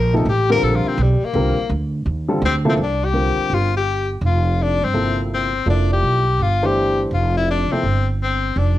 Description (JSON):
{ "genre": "modal jazz", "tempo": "166 BPM", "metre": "4/4", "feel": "swing 65% on 8ths", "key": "C mixolydian", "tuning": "A4 = 440 Hz", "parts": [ { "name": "bright tenor saxophone", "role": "melody", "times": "0.0-8.8 s", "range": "G3 to Bb4", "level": "-20 LUFS", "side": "left 4 dB", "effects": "cassette tape" }, { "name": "upright bass", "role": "bass", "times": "0.0-8.8 s", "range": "F1 to G2", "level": "-19 LUFS", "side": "right 1 dB", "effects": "none" }, { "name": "dark baby grand piano", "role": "accompaniment", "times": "0.1-7.8 s", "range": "C3 to D5", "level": "-21 LUFS", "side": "equal", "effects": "cassette tape" } ], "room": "moderate studio reverb, RT60 0.6 s", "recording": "home recording on cassette", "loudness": "-16 LUFS", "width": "side -14 dB against mid", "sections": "0.0-2.8 A section; 2.8-8.8 B section", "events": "tenor saxophone solo 0.0-2.8", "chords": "0.0 F9sus4; 2.8 C9sus4", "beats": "0.27 0.63 0.99 | 1.34 1.71 2.06 2.42 | 2.79 3.15 3.51 3.87 | 4.23 4.59 4.95 5.31 | 5.67 6.03 6.40 6.76 | 7.12 7.48 7.84 8.20 | 8.56" }